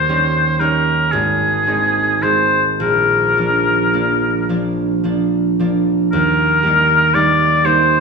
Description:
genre	classical, romantic duo for oboe and harp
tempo	34-40 BPM (dotted quarters)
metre	6/8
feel	rubato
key	Eb major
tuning	A4 = 442 Hz
part	clear oboe	melody	0.0-8.0 s	Ab4 to D5	-14 LUFS	left 2 dB	none
part	concert harp	accompaniment	0.0-8.0 s	Ab1 to Eb4	-17 LUFS	right 3 dB	none
room	moderate scoring stage reverb, RT60 1.7 s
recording	studio reverb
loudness	-13 LUFS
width	side -4 dB against mid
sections	0.0-6.1 A section; 6.1-8.0 B section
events	none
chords	0.0 Eb7; 1.1 Ab; 2.8 Bb; 6.1 Eb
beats	1.12 | 2.81 4.49 | 6.12 7.64

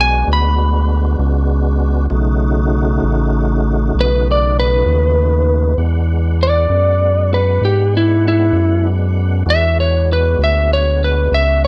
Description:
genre	slow blues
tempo	65 BPM (dotted quarters)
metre	12/8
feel	straight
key	E mixolydian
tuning	A4 = 440 Hz
part	lightly driven lead guitar	melody	0.0-11.7 s	E4 to B5	-18 LUFS	equal	plate reverb
part	tonewheel organ	sustained chords	0.0-11.7 s	C#3 to F#5	-25 LUFS	equal	slow rotary speaker, overdrive, chorus vibrato, plate reverb
part	round analog bass	bass	0.0-11.7 s	A1 to G#2	-17 LUFS	equal	none
room	moderate club reverb, RT60 0.5 s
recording	none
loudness	-15 LUFS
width	mono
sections	0.0-5.8 A section; 5.8-11.7 B section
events	lead electric guitar solo 5.8-11.7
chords	0.0 E9 (rootless); 2.1 B9; 5.8 E9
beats	0.26 1.18 | 2.10 3.02 3.94 4.86 | 5.78 6.70 7.62 8.54 | 9.47 10.39 11.32

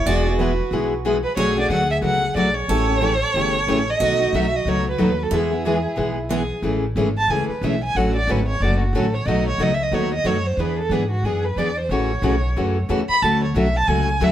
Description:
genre	acoustic string swing (jazz manouche)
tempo	182 BPM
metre	4/4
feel	swing 60% on 8ths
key	A major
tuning	A4 = 440 Hz
part	dark violin	melody	0.0-14.3 s	F#4 to B5	-22 LUFS	right 2 dB	none
part	picked steel-string acoustic guitar	second line	0.0-6.6 s	E4 to A4	-27 LUFS	right 3 dB	none
part	picked steel-string acoustic guitar	accompaniment	0.1-14.3 s	B2 to G#4	-23 LUFS	left 2 dB	none
part	picked steel-string acoustic guitar	accompaniment	0.1-14.3 s	B2 to B4	-29 LUFS	right 5 dB	none
part	upright bass	bass	0.1-14.3 s	E1 to G#2	-24 LUFS	equal	none
room	moderate studio reverb, RT60 0.9 s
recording	band playing live in one room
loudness	-18 LUFS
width	side -11 dB against mid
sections	0.0-6.6 A section; 6.6-14.3 B section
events	violin solo 6.6-14.3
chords	0.1 E; 1.4 Bm7; 2.7 A7; 4.0 B7; 5.3 E; 6.6 Amaj7; 8.0 Dmaj7; 9.3 B7; 10.6 E7; 11.9 A69; 13.2 Dmaj7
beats	| 0.07 0.39 0.72 1.05 | 1.38 1.71 2.04 2.36 | 2.69 3.02 3.35 3.68 | 4.01 4.33 4.66 4.99 | 5.32 5.65 5.98 6.31 | 6.64 6.96 7.29 7.62 | 7.95 8.28 8.61 8.94 | 9.27 9.60 9.93 10.26 | 10.58 10.91 11.24 11.57 | 11.90 12.23 12.56 12.89 | 13.22 13.55 13.88 14.21

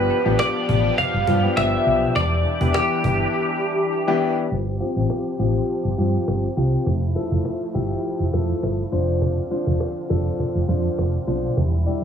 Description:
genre	dance-pop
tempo	102 BPM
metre	4/4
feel	straight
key	unclear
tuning	A4 = 440 Hz
part	twelve-string electric guitar	melody	0.0-4.2 s	G4 to F5	-22 LUFS	equal	wide subtle chorus, tape echo
part	warm concert grand piano	accompaniment	0.0-12.0 s	E3 to D5	-24 LUFS	left 3 dB	none
part	filtered supersaw swell	sustained chords	0.0-12.0 s	D3 to G4	-29 LUFS	right 2 dB	none
part	hollow-body short-scale fingered electric bass	bass	0.0-11.8 s	E1 to G2	-22 LUFS	equal	none
part	cajon	drums	0.1-11.9 s	none	-29 LUFS	right 1 dB	none
room	light reverb, small room ambience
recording	low-pass filter, studio ambience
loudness	-19 LUFS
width	side -8 dB against mid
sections	0.0-4.5 A section; 4.5-12.0 B section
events	silent gap 3.3-4.5; filter sweep 4.5-12.0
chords	0.0 G7; 2.2 Em7; 4.5 G7sus4; 6.9 Fmaj7; 8.9 Dm7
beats	0.39 0.98 1.57 | 2.16 2.75 3.33 3.92 | 4.51 5.10 5.69 6.28 | 6.86 7.45 8.04 8.63 | 9.22 9.80 10.39 10.98 | 11.57

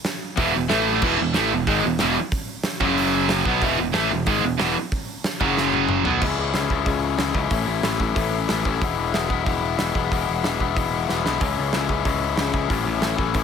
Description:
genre	punk rock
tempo	185 BPM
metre	4/4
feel	straight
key	E major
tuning	A4 = 440 Hz
part	big rock drum kit	drums	0.0-13.4 s	crash cymbal, hi-hat, kick drum, snare drum, toms	-26 LUFS	right 1 dB	none
part	biting overdriven guitar	riff	0.4-6.2 s	E2 to B3	-26 LUFS	equal	none
part	raw garage guitar	riff	0.4-13.4 s	E2 to E4	-24 LUFS	left 11 dB	overdrive
part	tight distorted guitar	riff	0.4-6.2 s	E2 to B3	-22 LUFS	right 14 dB	distortion
part	modern bright picked electric bass	bass	0.4-13.4 s	E1 to C#2	-28 LUFS	right 1 dB	none
room	light reverb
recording	none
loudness	-19 LUFS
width	side -7 dB against mid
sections	0.0-6.2 A section; 6.2-13.4 B section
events	drum fill 5.6-6.2, 11.1-11.4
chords	0.0 E5; 0.7 A5; 1.0 E; 2.8 F#5; 3.5 E; 5.4 F#5; 6.1 B5; 6.2 C#m; 7.5 A; 8.8 E; 11.4 C#m; 12.7 A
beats	0.07 0.39 0.72 | 1.04 1.36 1.69 2.01 | 2.33 2.66 2.98 3.31 | 3.63 3.95 4.28 4.60 | 4.92 5.25 5.57 5.89 | 6.22 6.54 6.87 7.19 | 7.52 7.84 8.17 8.49 | 8.82 9.14 9.47 9.79 | 10.12 10.44 10.76 11.09 | 11.41 11.74 12.06 12.39 | 12.71 13.04 13.36

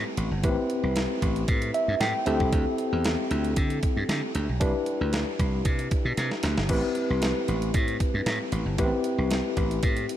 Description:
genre	early-eighties boogie funk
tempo	115 BPM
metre	4/4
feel	straight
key	A minor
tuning	A4 = 436 Hz
part	tine electric piano	accompaniment	0.0-10.2 s	B3 to G5	-28 LUFS	left 1 dB	medium stereo tremolo
part	slap bass	bass	0.0-10.0 s	G1 to D3	-27 LUFS	equal	none
part	detuned 8-bit digital drum machine	drums	0.2-10.2 s	crash cymbal, hi-hat, kick drum, snare drum	-28 LUFS	equal	none
room	moderate huge ambient reverb, RT60 7.5 s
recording	dreamy mix soaked in reverb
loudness	-23 LUFS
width	side -11 dB against mid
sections	0.0-10.2 A section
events	tine electric piano fill 1.5-2.5; drum fill 6.2-6.7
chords	0.0 Am9; 2.3 D9sus4; 4.6 Cmaj9; 6.7 Am9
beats	| 0.43 0.96 1.48 2.00 | 2.52 3.04 3.57 4.09 | 4.61 5.13 5.65 6.17 | 6.70 7.22 7.74 8.26 | 8.78 9.30 9.83

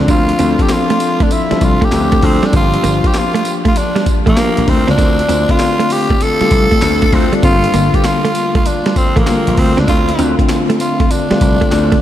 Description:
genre	R&B, new jack swing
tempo	98 BPM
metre	4/4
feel	swing 66% on 16ths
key	D minor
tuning	A4 = 440 Hz
part	raspy tenor saxophone	melody	0.0-12.0 s	Bb3 to A4	-16 LUFS	equal	analog delay
part	bell-like tine electric piano	accompaniment	0.0-12.0 s	D3 to A4	-17 LUFS	left 4 dB	fast stereo tremolo
part	direct-recorded clean electric guitar	riff	0.0-12.0 s	G3 to D4	-19 LUFS	right 4 dB	lush chorus
part	gritty slap bass	bass	0.0-11.9 s	G1 to D2	-16 LUFS	equal	overdrive
part	breakbeat sampler-style drum kit	drums	0.1-12.0 s	handclaps, hi-hat, kick drum, snare drum, tambourine	-16 LUFS	equal	none
room	moderate huge ambient reverb, RT60 4.2 s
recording	dreamy mix soaked in reverb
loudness	-10 LUFS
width	side -12 dB against mid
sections	0.0-12.0 A section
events	none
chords	0.0 Dm7; 2.5 Gm7; 4.7 Dm7; 7.4 Gm7; 9.6 Dm7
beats	| 0.09 0.70 1.31 1.92 | 2.53 3.15 3.76 4.37 | 4.98 5.59 6.21 6.82 | 7.43 8.04 8.66 9.27 | 9.88 10.49 11.11 11.72

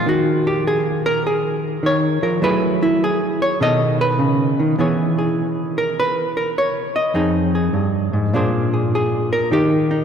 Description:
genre	solo jazz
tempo	102 BPM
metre	4/4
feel	swing 66% on 8ths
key	unclear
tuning	A4 = 440 Hz
part	hollow-body jazz guitar	solo	0.0-10.0 s	F2 to D#5	-16 LUFS	equal	none
room	wet cathedral reverb, RT60 4.7 s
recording	recorded in a church or concert hall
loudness	-16 LUFS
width	side -7 dB against mid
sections	0.1-10.0 A section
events	hollow-body jazz guitar solo 0.0-10.0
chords	0.1 Eb5; 2.4 Gbm9; 3.6 B9; 4.8 E6; 7.2 Fm9; 8.3 Bb9; 9.5 Eb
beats	| 0.07 0.66 1.25 1.84 | 2.43 3.02 3.61 4.20 | 4.79 5.38 5.97 6.56 | 7.15 7.74 8.33 8.92 | 9.51

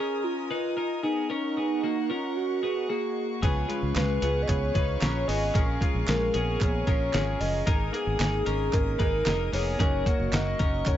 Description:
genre	jangly indie pop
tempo	113 BPM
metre	4/4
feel	straight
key	Db mixolydian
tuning	A4 = 440 Hz
part	warbly nostalgic lead	melody	0.0-11.0 s	Eb4 to Eb5	-30 LUFS	right 1 dB	chorus, tremolo, slapback echo
part	rich studio string section	sustained chords	0.0-11.0 s	Bb4 to Eb6	-39 LUFS	right 1 dB	none
part	twelve-string electric guitar	arpeggios	0.0-11.0 s	Ab3 to Cb5	-31 LUFS	left 3 dB	warbly pitch drift
part	bright upright piano	accompaniment	3.4-11.0 s	Bb3 to Db5	-36 LUFS	left 4 dB	none
part	picked steel-string acoustic guitar	accompaniment	3.4-11.0 s	Bb2 to Db5	-38 LUFS	right 9 dB	none
part	fingered electric bass	bass	3.4-11.0 s	F1 to Db2	-29 LUFS	equal	none
part	dusty soul sampler-style drum kit	drums	3.4-11.0 s	hi-hat, kick drum, snare drum	-28 LUFS	equal	none
part	group handclap	percussion	4.0-11.0 s	none	-39 LUFS	right 7 dB	none
room	light reverb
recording	dark, warm production, nothing above 7.8 kHz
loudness	-24 LUFS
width	side -11 dB against mid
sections	0.0-11.0 A section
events	none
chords	0.0 Absus2; 1.3 Gb6; 3.4 Db7; 5.5 Bbm7; 7.7 Absus2; 9.8 Gb6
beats	0.25 0.78 | 1.31 1.84 2.37 2.90 | 3.43 3.96 4.49 5.02 | 5.55 6.08 6.61 7.14 | 7.67 8.21 8.74 9.27 | 9.80 10.33 10.87

